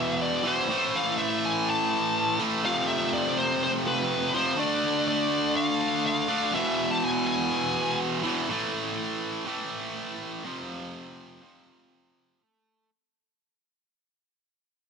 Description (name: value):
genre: metal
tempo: 123 BPM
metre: 4/4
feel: straight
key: A harmonic minor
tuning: A4 = 442 Hz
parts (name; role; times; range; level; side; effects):
- high-gain lead guitar; melody; 0.0-8.0 s; B4 to A5; -28 LUFS; left 2 dB; distortion
- tight distorted guitar; riff; 0.0-12.9 s; E2 to D4; -26 LUFS; right 1 dB; distortion
room: light reverb, digital ambience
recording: dark, warm production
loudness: -24 LUFS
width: side -6 dB against mid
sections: 0.0-8.5 A section; 8.5-12.4 B section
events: half time 0.0-8.5; fade-out 8.5-12.4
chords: 0.0 E5; 0.7 A5; 2.6 F5; 4.6 Dm; 6.5 E; 8.5 A5; 10.4 F5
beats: 0.21 | 0.70 1.18 1.67 2.16 | 2.65 3.13 3.62 4.11 | 4.60 5.08 5.57 6.06 | 6.54 7.03 7.52 8.01 | 8.50 8.98 9.47 9.96 | 10.45 10.94 11.43 11.92